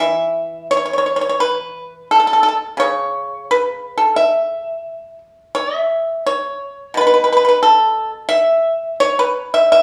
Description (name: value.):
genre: chinese traditional, Chinese solo plucked strings.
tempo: 87 BPM.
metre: 2/4.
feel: rubato.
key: unclear.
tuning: A4 = 440 Hz.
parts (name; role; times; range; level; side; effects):
pipa; solo; 0.0-9.8 s; B2 to E5; -16 LUFS; equal; none.
room: moderate large studio reverb, RT60 1.0 s.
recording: band playing live in one room, studio reverb.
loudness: -16 LUFS.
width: mono.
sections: 0.0-9.8 A section.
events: none.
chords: none.